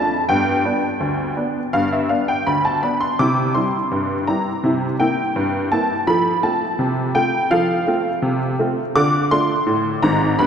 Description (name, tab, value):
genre	ragtime piano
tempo	83 BPM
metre	2/4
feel	straight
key	unclear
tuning	A4 = 436 Hz
part	honky-tonk upright piano	solo	0.0-10.5 s	Ab1 to D6	-16 LUFS	equal	none
room	wet cathedral reverb, RT60 5.0 s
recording	recorded in a church or concert hall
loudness	-17 LUFS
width	side -7 dB against mid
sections	0.0-10.5 A section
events	none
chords	0.3 G; 3.2 C; 4.6 C7; 6.1 F; 9.0 Dm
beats	| 0.28 1.01 | 1.74 2.46 | 3.19 3.92 | 4.64 5.36 | 6.08 6.79 | 7.51 8.23 | 8.95 9.67 | 10.39